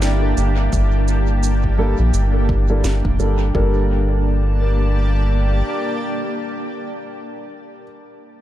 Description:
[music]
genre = ambient dub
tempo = 85 BPM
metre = 4/4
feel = swing 58% on 16ths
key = G minor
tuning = A4 = 441 Hz
[part]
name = granular cloud pad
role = sustained chords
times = 0.0-7.1 s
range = Bb3 to A5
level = -24 LUFS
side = equal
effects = built-in reverb
[part]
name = felt-muted upright piano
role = arpeggios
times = 0.0-8.4 s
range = E4 to G5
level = -32 LUFS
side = left 6 dB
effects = low-pass filter, analog delay
[part]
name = round analog bass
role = bass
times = 0.0-5.6 s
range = F1 to Bb1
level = -17 LUFS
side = equal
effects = none
[part]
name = electronic snare drum and shaker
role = drums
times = 0.0-3.4 s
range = none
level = -32 LUFS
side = right 2 dB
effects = overdrive, small room ambience, dub echo
[part]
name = electronic kick drum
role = drums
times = 0.7-3.7 s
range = none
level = -23 LUFS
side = equal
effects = none
[part]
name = warm upright piano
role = stabs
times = 1.8-7.8 s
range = G3 to A4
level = -27 LUFS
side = right 1 dB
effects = low-pass filter, dub echo
[sound]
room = digital ambience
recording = echo-heavy mix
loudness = -16 LUFS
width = side -13 dB against mid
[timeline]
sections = 0.0-3.5 A section; 3.5-6.4 B section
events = filter sweep on analog synth bass 0.0-3.5; filter sweep on upright piano 0.0-3.5; filter sweep on felt piano 0.0-3.5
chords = 0.0 Gmadd9

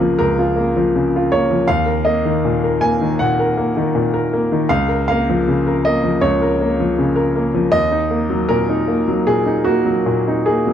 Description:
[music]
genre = neoclassical minimalist piano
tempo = 79 BPM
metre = 4/4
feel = rubato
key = Eb minor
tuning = A4 = 440 Hz
[part]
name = clear grand piano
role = solo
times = 0.0-10.7 s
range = Db2 to Ab5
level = -14 LUFS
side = equal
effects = none
[sound]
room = light reverb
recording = dry, close 1970s-style studio recording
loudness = -14 LUFS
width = side -9 dB against mid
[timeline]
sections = 0.0-10.7 A section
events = none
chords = 0.0 Bbm/Db; 1.7 Ebm; 4.7 Bbm/Db; 7.7 Ebm

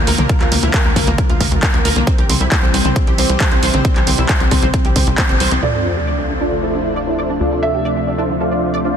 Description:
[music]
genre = uplifting trance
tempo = 135 BPM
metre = 4/4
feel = straight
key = D minor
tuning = A4 = 440 Hz
[part]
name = lush unison pad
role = sustained chords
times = 0.0-9.0 s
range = C3 to C5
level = -22 LUFS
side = equal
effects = chorus, phaser, sidechain pumping
[part]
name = tight sequencer bass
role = bass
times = 0.0-9.0 s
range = G1 to D2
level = -20 LUFS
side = equal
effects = sidechain pumping
[part]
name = analog pluck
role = arpeggios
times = 0.1-8.9 s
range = Bb2 to D5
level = -22 LUFS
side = equal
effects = ensemble chorus, sidechain pumping, tape echo
[part]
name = punchy analog drum machine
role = drums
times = 0.1-5.6 s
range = handclaps, hi-hat, toms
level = -19 LUFS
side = equal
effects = none
[part]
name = electronic kick drum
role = drums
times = 0.3-5.3 s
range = none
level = -15 LUFS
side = equal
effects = overdrive
[part]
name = supersaw chords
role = melody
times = 5.6-9.0 s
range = C4 to F5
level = -21 LUFS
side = equal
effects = sidechain pumping, low-pass filter, tape echo
[part]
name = felt-muted upright piano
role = second line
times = 5.6-9.0 s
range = D5 to E5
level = -24 LUFS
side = right 3 dB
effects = tape echo
[part]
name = sub drop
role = sound effects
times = 5.6-7.4 s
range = none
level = -24 LUFS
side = equal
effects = none
[sound]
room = light reverb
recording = dense, heavily limited modern master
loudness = -13 LUFS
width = side -8 dB against mid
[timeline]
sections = 0.0-5.6 A section; 5.6-9.0 B section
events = band accent 5.2; impact 5.6-7.4; filter sweep on supersaw synth 5.6-9.0; filter sweep on synth pluck 5.6-9.0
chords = 0.0 Bb; 2.1 C; 5.6 Dm7

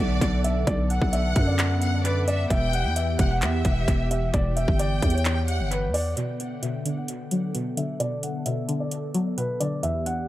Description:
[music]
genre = hip hop, trap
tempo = 131 BPM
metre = 4/4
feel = half-time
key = B minor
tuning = A4 = 439 Hz
[part]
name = felt-muted upright piano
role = melody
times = 0.0-10.3 s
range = B4 to F#5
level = -30 LUFS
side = equal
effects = low-pass filter, dub echo
[part]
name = warm studio violin section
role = second line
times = 0.0-5.7 s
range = D5 to G5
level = -33 LUFS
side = left 1 dB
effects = dub echo
[part]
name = warm analog pad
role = sustained chords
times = 0.0-10.3 s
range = D3 to A4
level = -32 LUFS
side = equal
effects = chorus, low-pass filter
[part]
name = growling 808-style bass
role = bass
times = 0.0-6.2 s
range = E1 to F#2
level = -24 LUFS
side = equal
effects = none
[part]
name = trap drum kit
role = drums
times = 0.2-10.2 s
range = handclaps, hi-hat, kick drum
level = -26 LUFS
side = equal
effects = overdrive
[part]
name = string-like resonator pluck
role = accompaniment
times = 6.2-10.3 s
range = E2 to F#3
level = -28 LUFS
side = left 1 dB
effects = chorus, low-pass filter, dub echo
[sound]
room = digital ambience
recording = echo-heavy mix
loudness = -22 LUFS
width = side -15 dB against mid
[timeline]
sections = 0.0-6.2 A section; 6.2-10.3 B section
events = none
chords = 0.0 Bm7; 2.5 Em; 6.2 Bm7

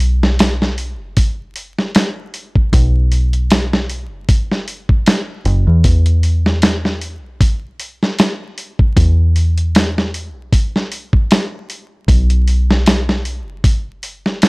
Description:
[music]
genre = trip hop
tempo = 77 BPM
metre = 4/4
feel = swing 55% on 16ths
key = unclear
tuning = A4 = 440 Hz
[part]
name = deep dub fingered electric bass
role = bass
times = 0.0-14.5 s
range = F#1 to E2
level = -14 LUFS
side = equal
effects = transformer saturation
[part]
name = dusty soul sampler-style drum kit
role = drums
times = 0.0-14.5 s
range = hi-hat, kick drum, snare drum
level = -14 LUFS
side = equal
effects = studio reverb
[sound]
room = little or no reverb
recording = dry, gritty hardware recording, vinyl crackle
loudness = -13 LUFS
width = side -29 dB against mid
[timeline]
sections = 0.0-14.5 A section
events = none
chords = none

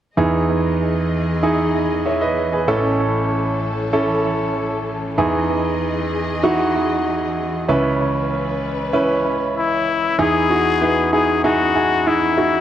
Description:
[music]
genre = pop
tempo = 96 BPM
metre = 4/4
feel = straight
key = E major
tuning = A4 = 440 Hz
[part]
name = bright concert grand piano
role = accompaniment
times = 0.2-12.6 s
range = A1 to E5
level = -18 LUFS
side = right 2 dB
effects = analog delay
[part]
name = warm studio string section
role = sustained chords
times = 0.2-10.2 s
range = E3 to D#5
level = -26 LUFS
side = left 3 dB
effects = none
[part]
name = growling trumpet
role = melody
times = 9.6-12.6 s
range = E4 to G#4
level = -18 LUFS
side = left 6 dB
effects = none
[sound]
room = wet spring reverb, RT60 2.2 s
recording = echo-heavy mix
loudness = -16 LUFS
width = side -10 dB against mid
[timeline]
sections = 0.2-10.2 A section; 10.2-12.6 B section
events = none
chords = 0.2 Emaj7; 2.7 A; 5.2 Emaj7; 7.7 C#m7; 10.2 Emaj7

